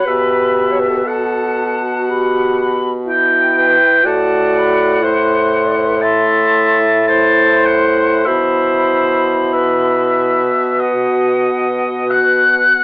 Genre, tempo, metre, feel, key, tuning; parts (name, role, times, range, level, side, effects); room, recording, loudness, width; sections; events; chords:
classical, slow romantic movement for wind quintet; 44-62 BPM; 4/4; rubato; A4 = 441 Hz
hollow concert flute; melody; 0.0-12.8 s; F#5 to F#6; -19 LUFS; left 2 dB
clear oboe; second line; 0.0-12.8 s; D#5 to A5; -16 LUFS; left 1 dB
warm French horn; accompaniment; 0.0-12.8 s; E4 to G4; -20 LUFS; equal
warm clarinet; accompaniment; 0.0-12.7 s; G4 to E5; -17 LUFS; right 1 dB
warm bassoon; bass; 0.0-12.8 s; A2 to B2; -18 LUFS; equal
light reverb; AM radio sound; -11 LUFS; side -22 dB against mid
0.0-12.8 A section
0.1 A7sus2/B; 4.1 F#m7b5/A; 8.3 Bsus4; 10.8 B